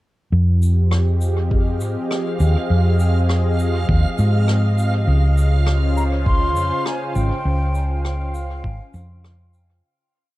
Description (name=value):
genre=ambient dub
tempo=101 BPM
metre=4/4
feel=swing 54% on 16ths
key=F minor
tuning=A4 = 440 Hz
part: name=warm analog pad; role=sustained chords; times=0.6-9.8 s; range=Db3 to Eb5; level=-25 LUFS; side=equal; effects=chorus
part: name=hollow-body short-scale fingered electric bass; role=bass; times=0.3-9.8 s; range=Ab1 to Ab2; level=-17 LUFS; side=equal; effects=none
part: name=backwards swelling texture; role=texture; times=1.3-9.8 s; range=F5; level=-31 LUFS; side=right 5 dB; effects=built-in reverb
part: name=shaker and rim click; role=drums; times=0.6-9.7 s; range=none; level=-32 LUFS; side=left 1 dB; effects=dub echo
part: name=electronic kick drum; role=drums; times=1.5-8.8 s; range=none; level=-20 LUFS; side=equal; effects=none
part: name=mellow hollow silver concert flute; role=melody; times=6.0-9.2 s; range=F5 to C6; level=-26 LUFS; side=left 2 dB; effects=dub echo
room=small room ambience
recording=dark, warm production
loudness=-16 LUFS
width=side -17 dB against mid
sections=0.3-9.8 groove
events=fade-out 6.7-9.8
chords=0.3 Fm9; 5.1 Dbmaj7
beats=| 0.33 0.92 1.51 2.11 | 2.70 3.29 3.89 4.48 | 5.08 5.67 6.26 6.86 | 7.45 8.05 8.64 9.24